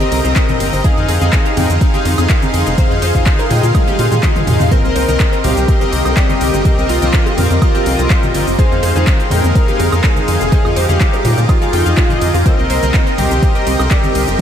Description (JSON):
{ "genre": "progressive house", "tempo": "124 BPM", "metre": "4/4", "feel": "straight", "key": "C minor", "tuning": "A4 = 440 Hz", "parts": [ { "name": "supersaw pad", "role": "sustained chords", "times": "0.0-14.4 s", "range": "Ab3 to D6", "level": "-23 LUFS", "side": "equal", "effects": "lush chorus, sidechain pumping" }, { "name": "wide unison pluck", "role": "arpeggios", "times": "0.0-14.4 s", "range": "C4 to D5", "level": "-22 LUFS", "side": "right 1 dB", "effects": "wide subtle chorus, sidechain pumping, tape echo" }, { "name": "chorused polysynth", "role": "stabs", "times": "0.0-14.3 s", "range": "C4 to G5", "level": "-20 LUFS", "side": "left 3 dB", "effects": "sidechain pumping, tape echo" }, { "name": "big-room dance drum kit", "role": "drums", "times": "0.0-14.4 s", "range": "cabasa, handclaps, hi-hat, ride cymbal, toms, woodblock", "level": "-22 LUFS", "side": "equal", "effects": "none" }, { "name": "congas and bongos", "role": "percussion", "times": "0.0-14.4 s", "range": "none", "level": "-25 LUFS", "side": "left 2 dB", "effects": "none" }, { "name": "tight sequencer bass", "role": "bass", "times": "0.1-14.4 s", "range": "F1 to Bb2", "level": "-16 LUFS", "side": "equal", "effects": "sidechain pumping" }, { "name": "electronic kick drum", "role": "drums", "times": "0.4-14.0 s", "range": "none", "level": "-14 LUFS", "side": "equal", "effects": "overdrive" }, { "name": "wide unison lead", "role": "melody", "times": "4.7-14.4 s", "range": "F4 to C5", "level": "-20 LUFS", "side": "right 1 dB", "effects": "vintage 12-bit sampler grit, sidechain pumping, tape echo" } ], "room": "light reverb", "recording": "none", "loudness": "-11 LUFS", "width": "side -9 dB against mid", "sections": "0.0-14.4 A section", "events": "drum fill 3.7-4.7", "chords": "0.0 Cm7; 0.8 Fm7; 4.7 Cm7; 8.6 Fm7; 12.5 Cm7" }